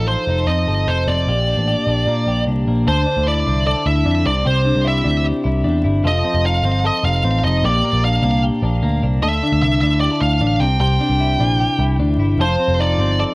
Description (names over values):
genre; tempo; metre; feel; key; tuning
jangly indie pop; 151 BPM; 4/4; straight; C mixolydian; A4 = 440 Hz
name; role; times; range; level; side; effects
high-gain lead guitar; melody; 0.0-13.3 s; C5 to G5; -20 LUFS; right 1 dB; distortion, tape echo
twelve-string electric guitar; arpeggios; 0.0-13.3 s; Bb2 to A4; -20 LUFS; left 1 dB; none
vintage muted picked electric bass; bass; 0.0-13.2 s; F1 to Bb2; -18 LUFS; equal; none
room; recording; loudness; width
moderate club reverb, RT60 0.6 s; worn, warbling old tape, cassette tape, vinyl crackle, warbly pitch drift; -14 LUFS; side -24 dB against mid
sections
0.0-2.9 A section; 2.9-13.3 B section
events
none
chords
0.0 F7; 1.3 Bb6; 2.9 Dmadd9; 4.3 Cadd9; 6.1 F7; 7.6 Bb6; 9.2 Dmadd9; 10.6 Cadd9; 12.4 F7